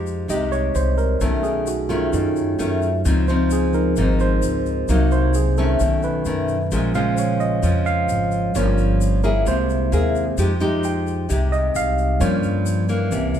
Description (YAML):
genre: bossa nova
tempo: 131 BPM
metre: 4/4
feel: straight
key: F minor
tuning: A4 = 439 Hz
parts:
  - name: barky tine electric piano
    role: accompaniment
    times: 0.0-13.4 s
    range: Db3 to G5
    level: -23 LUFS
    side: right 4 dB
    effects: overdrive
  - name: nylon-string guitar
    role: accompaniment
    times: 0.0-13.4 s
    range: F2 to Ab4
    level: -22 LUFS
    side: left 2 dB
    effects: none
  - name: upright bass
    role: bass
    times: 0.0-13.4 s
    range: G1 to C3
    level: -22 LUFS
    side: equal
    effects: none
  - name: tube shaker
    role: percussion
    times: 0.1-13.4 s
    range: none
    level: -38 LUFS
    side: left 8 dB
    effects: none
room: moderate large studio reverb, RT60 1.2 s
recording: heard from further back in the room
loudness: -17 LUFS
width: side -9 dB against mid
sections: 0.0-13.4 A section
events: tine electric piano solo 0.0-13.4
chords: 0.0 Fm9; 1.2 B9; 3.1 Dbmaj9; 4.9 Cm7b5; 5.8 B9; 6.7 Bbm7; 8.6 Gm7b5; 9.5 C7alt; 10.4 Fm9; 12.2 Gm7b5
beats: 0.29 0.75 | 1.21 1.67 2.13 2.59 | 3.05 3.51 3.97 4.43 | 4.89 5.35 5.80 6.26 | 6.72 7.18 7.64 8.09 | 8.55 9.01 9.47 9.92 | 10.38 10.84 11.29 11.75 | 12.21 12.67 13.12